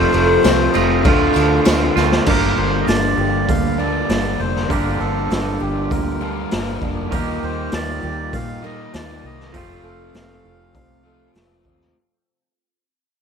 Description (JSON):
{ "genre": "rock, shoegaze and dream pop", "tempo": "99 BPM", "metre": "4/4", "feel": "straight", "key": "G minor", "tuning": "A4 = 440 Hz", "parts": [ { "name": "melodica", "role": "melody", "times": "0.0-11.3 s", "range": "G4 to F5", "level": "-26 LUFS", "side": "equal", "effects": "tape echo" }, { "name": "picked twelve-string acoustic guitar", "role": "arpeggios", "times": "0.0-12.0 s", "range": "F3 to G4", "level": "-26 LUFS", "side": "right 1 dB", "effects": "analog chorus, tape echo" }, { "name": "raw garage guitar", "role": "riff", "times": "0.0-11.9 s", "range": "G2 to F4", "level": "-22 LUFS", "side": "left 4 dB", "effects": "overdrive, lush chorus" }, { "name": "twangy electric guitar", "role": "riff", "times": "0.0-12.0 s", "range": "F2 to G4", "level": "-23 LUFS", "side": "right 8 dB", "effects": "reverse reverb" }, { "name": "vintage muted fingered electric bass", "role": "bass", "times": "0.0-11.9 s", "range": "F1 to Bb2", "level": "-24 LUFS", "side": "equal", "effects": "none" }, { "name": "raw garage drum kit", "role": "drums", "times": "0.1-11.9 s", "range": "crash cymbal, hi-hat, kick drum, snare drum", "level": "-21 LUFS", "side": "equal", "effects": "none" }, { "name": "tambourine", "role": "percussion", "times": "0.4-2.1 s", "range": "none", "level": "-34 LUFS", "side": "left 5 dB", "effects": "none" } ], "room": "light reverb", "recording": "none", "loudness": "-16 LUFS", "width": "side -6 dB against mid", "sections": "0.0-2.3 A section; 2.3-12.0 B section", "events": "drum fill 2.0-2.3; fade-out 2.3-12.0", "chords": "0.0 F; 1.0 Dm7; 2.3 Gm7; 7.1 Ebmaj7; 9.5 F" }